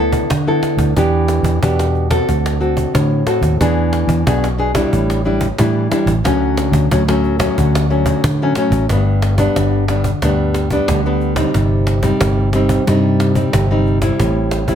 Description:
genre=samba and choro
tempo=91 BPM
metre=4/4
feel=straight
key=D major, G major from 8.9 s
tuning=A4 = 440 Hz
part: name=nylon-string guitar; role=accompaniment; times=0.0-14.8 s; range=G2 to A4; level=-16 LUFS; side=left 1 dB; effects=none
part: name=vintage muted fingered electric bass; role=bass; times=0.0-14.8 s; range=G1 to D3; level=-17 LUFS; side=right 1 dB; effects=none
part: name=cajon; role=drums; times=0.1-14.8 s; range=none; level=-22 LUFS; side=right 1 dB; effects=none
room=little or no reverb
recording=close, detailed microphones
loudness=-13 LUFS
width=side -9 dB against mid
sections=0.0-8.9 A section; 8.9-14.8 B section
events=none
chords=0.0 Asus24/D; 1.0 Em7; 2.3 D7; 3.6 E7; 4.9 A7sus4; 6.3 Dmaj7; 8.9 G; 11.5 Cm/G; 14.2 Am7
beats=0.31 | 0.97 1.63 2.29 2.95 | 3.61 4.27 4.93 5.59 | 6.25 6.92 7.58 8.24 | 8.90 9.56 10.22 10.89 | 11.55 12.21 12.87 13.54 | 14.20

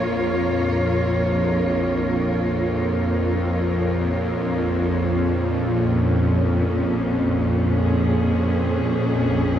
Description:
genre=dark ambient drone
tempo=free time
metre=none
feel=none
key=Bb minor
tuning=A4 = 440 Hz
part: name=warm studio cello section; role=sustained chords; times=0.0-9.6 s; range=Bb2 to Db5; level=-23 LUFS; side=equal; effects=none
part: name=bowed-like drone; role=drone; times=0.0-9.6 s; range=Bb1 to F2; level=-20 LUFS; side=equal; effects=built-in reverb
room=wet cathedral reverb, RT60 6.0 s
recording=in a vast, echoing space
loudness=-19 LUFS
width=side -10 dB against mid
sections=0.0-9.6 A section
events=none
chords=0.0 Bbm7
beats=free time

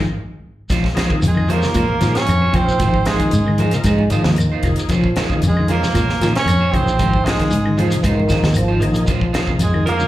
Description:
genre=afrobeat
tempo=115 BPM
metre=4/4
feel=straight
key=Bb minor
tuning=A4 = 439 Hz
part: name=semi-hollow electric guitar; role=arpeggios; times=0.7-10.1 s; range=C3 to F3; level=-24 LUFS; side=left 3 dB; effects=wide subtle chorus
part: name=electric guitar at the edge of break-up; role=stabs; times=0.7-10.0 s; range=Ab3 to C5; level=-26 LUFS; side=right 6 dB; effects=lush chorus, slapback echo
part: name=fingered electric bass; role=bass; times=0.7-10.0 s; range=F1 to Bb2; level=-18 LUFS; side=equal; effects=none
part: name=tight funk drum kit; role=drums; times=0.7-10.0 s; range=hi-hat, kick drum, snare drum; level=-22 LUFS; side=equal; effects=none
part: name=congas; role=percussion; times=0.7-10.1 s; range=none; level=-25 LUFS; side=right 1 dB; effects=none
part: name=shekere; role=percussion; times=0.7-10.1 s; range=none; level=-26 LUFS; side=equal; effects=none
part: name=overdriven tonewheel organ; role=accompaniment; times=0.9-10.1 s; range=F3 to Bb4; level=-27 LUFS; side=equal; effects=slow rotary speaker, chorus vibrato, slapback echo
part: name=claves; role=percussion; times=1.0-9.9 s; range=none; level=-35 LUFS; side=left 3 dB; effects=slapback echo
part: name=brilliant trombone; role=melody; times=1.3-10.1 s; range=Ab3 to Db4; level=-21 LUFS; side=right 2 dB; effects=slapback echo
part: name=edgy alto saxophone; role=second line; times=1.3-10.1 s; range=Ab4 to Db5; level=-26 LUFS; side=right 4 dB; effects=slapback echo
part: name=muted trombone section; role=second line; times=3.6-9.5 s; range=Eb3 to Ab3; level=-23 LUFS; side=right 1 dB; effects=none
room=light reverb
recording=live gig heard through the venue's PA, club reverb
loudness=-14 LUFS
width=side -14 dB against mid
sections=0.7-10.1 A section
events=band accent 0.0-0.7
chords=0.0 N.C.; 0.7 Bbm9; 2.8 Ab6; 4.9 Bbm9; 7.0 Ab6; 9.1 Bbm9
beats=0.18 | 0.70 1.23 1.76 2.28 | 2.81 3.33 3.86 4.38 | 4.91 5.43 5.95 6.47 | 7.00 7.52 8.04 8.56 | 9.08 9.60

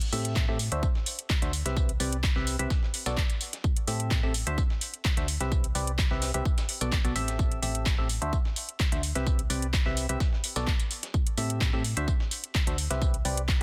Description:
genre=piano house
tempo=128 BPM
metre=4/4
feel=straight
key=unclear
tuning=A4 = 440 Hz
part: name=house drum kit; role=drums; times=0.0-13.6 s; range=handclaps, hi-hat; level=-34 LUFS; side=equal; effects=none
part: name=percussive organ stab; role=riff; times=0.1-13.6 s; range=B3 to E5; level=-36 LUFS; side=equal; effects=chorus, phaser, sidechain pumping, delay
part: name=solid FM bass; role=bass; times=0.1-13.6 s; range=A1 to A2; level=-34 LUFS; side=equal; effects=sidechain pumping
part: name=electronic tambourine and snare drum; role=drums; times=0.1-13.6 s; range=none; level=-42 LUFS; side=equal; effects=high-pass filter on perc, high-pass filter on snare
part: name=electronic kick drum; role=drums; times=0.4-13.6 s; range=none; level=-29 LUFS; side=equal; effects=none
room=digital ambience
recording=dense, heavily limited modern master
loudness=-28 LUFS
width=mono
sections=0.0-13.6 A section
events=none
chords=0.0 Am7; 0.6 D9; 1.5 Cmaj7; 2.7 Bm7; 3.6 Am7; 4.3 D9; 5.3 Cmaj7; 6.5 Bm7; 7.4 Am7; 8.1 D9; 9.0 Cmaj7; 10.2 Bm7; 11.1 Am7; 11.8 D9; 12.8 Cmaj7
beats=0.36 0.83 1.30 | 1.77 2.23 2.70 3.17 | 3.64 4.11 4.58 5.05 | 5.52 5.99 6.45 6.92 | 7.39 7.86 8.33 8.80 | 9.27 9.73 10.20 10.67 | 11.14 11.61 12.08 12.55 | 13.02 13.48

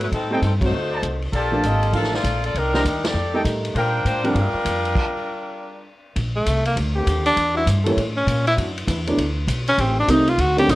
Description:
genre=jazz, big band swing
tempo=199 BPM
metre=4/4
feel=swing 63% on 8ths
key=Bb major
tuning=A4 = 440 Hz
part: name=edgy saxophone section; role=melody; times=0.0-5.9 s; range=G3 to F5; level=-24 LUFS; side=left 1 dB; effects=none
part: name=warm upright piano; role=accompaniment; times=0.0-4.3, 7.9-10.8 s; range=Eb3 to F#4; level=-22 LUFS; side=right 1 dB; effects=none
part: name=upright bass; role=bass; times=0.0-10.8 s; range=Ab1 to Bb2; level=-23 LUFS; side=equal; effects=none
part: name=vintage drum kit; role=drums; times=0.0-10.8 s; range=crash cymbal, hi-hat, kick drum, ride cymbal, snare drum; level=-27 LUFS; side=equal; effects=none
part: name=warm trumpet section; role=stabs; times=0.3-4.6 s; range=D4 to Bb5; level=-27 LUFS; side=equal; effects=none
part: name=bright tenor saxophone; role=melody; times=6.4-10.8 s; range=A3 to G4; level=-19 LUFS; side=equal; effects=none
part: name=warm trombone section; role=sustained chords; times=7.0-10.2 s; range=D3 to A4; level=-29 LUFS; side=left 1 dB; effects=none
room=light reverb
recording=worn, warbling old tape, cassette tape, warbly pitch drift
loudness=-18 LUFS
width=side -18 dB against mid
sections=0.0-6.2 A section; 6.2-10.8 B section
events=band accent 0.6, 3.0; stop 5.0-6.2; tenor saxophone solo 6.2-10.8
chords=0.1 Am7b5; 0.7 D7b9; 1.3 Gm9; 2.5 Cm9; 3.1 F13; 3.7 Bb69; 7.4 Em9; 8.0 A; 8.6 D69; 9.8 Am7b5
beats=| 0.12 0.42 0.72 1.03 | 1.33 1.63 1.93 2.24 | 2.54 2.84 3.14 3.45 | 3.75 4.05 4.35 4.66 | 4.96 5.26 5.56 5.86 | 6.16 6.47 6.77 7.07 | 7.37 7.67 7.97 8.28 | 8.58 8.88 9.18 9.48 | 9.78 10.09 10.39 10.69

